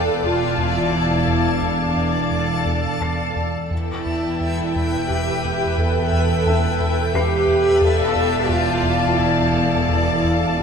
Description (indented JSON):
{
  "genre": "cinematic, suspense film score",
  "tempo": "87 BPM",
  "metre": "3/4",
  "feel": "straight",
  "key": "unclear",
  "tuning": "A4 = 442 Hz",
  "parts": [
    { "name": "dark studio violin section", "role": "melody", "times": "0.0-10.6 s", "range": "G5 to A5", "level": "-27 LUFS", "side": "left 5 dB", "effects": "none" },
    { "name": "rich studio violin section", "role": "second line", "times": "0.0-10.6 s", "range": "B4 to F5", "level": "-27 LUFS", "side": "left 2 dB", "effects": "none" },
    { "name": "warm studio viola section", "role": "accompaniment", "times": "0.0-10.6 s", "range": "D4 to A4", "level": "-22 LUFS", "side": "equal", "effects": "none" },
    { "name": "backwards swelling texture", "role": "sustained chords", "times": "0.0-10.6 s", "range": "A4 to A5", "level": "-27 LUFS", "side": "left 1 dB", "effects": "built-in reverb" },
    { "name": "round analog bass", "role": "riff", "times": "0.0-10.6 s", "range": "E2", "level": "-26 LUFS", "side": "right 1 dB", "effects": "none" },
    { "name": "dark studio double bass section", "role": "bass", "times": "0.0-10.6 s", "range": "E1", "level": "-27 LUFS", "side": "right 4 dB", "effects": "none" },
    { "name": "warm studio cello section", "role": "bass", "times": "0.0-10.6 s", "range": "E2", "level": "-26 LUFS", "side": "equal", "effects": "none" },
    { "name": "deep rumbling drone", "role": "drone", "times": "0.2-10.6 s", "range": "E2", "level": "-29 LUFS", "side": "right 2 dB", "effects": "built-in reverb" },
    { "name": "warm studio violin section", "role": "texture", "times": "0.0-3.3 s", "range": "D6 to G#6", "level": "-31 LUFS", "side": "left 7 dB", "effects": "none" },
    { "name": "felt-muted upright piano", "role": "texture", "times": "3.0-10.6 s", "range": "A4 to C7", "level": "-31 LUFS", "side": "left 4 dB", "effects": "none" }
  ],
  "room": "wet scoring stage reverb, RT60 1.8 s",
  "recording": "minimal, uncompressed stereo recording",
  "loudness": "-17 LUFS",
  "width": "side -6 dB against mid",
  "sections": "0.0-10.6 A section",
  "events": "none",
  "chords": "0.0 Dm/E; 3.7 Em; 7.8 Dm/E",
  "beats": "0.24 0.93 | 1.63 2.32 3.02 | 3.71 4.41 5.10 | 5.79 6.47 7.15 | 7.82 8.49 9.19 | 9.89 10.60"
}